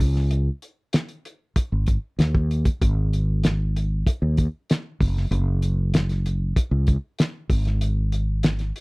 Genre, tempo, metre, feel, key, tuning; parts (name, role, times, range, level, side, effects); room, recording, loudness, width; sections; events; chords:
lush 1970s-style soul; 96 BPM; 4/4; straight; A4 = 435 Hz
mellow fretless electric bass; bass; 0.0-8.7 s; F#1 to D#2; -21 LUFS; equal
cloth-damped thuddy drum kit; drums; 0.0-8.8 s; hi-hat, kick drum, snare drum; -21 LUFS; equal
little or no reverb; dry, close 1970s-style studio recording; -20 LUFS; side -30 dB against mid
0.0-8.8 A section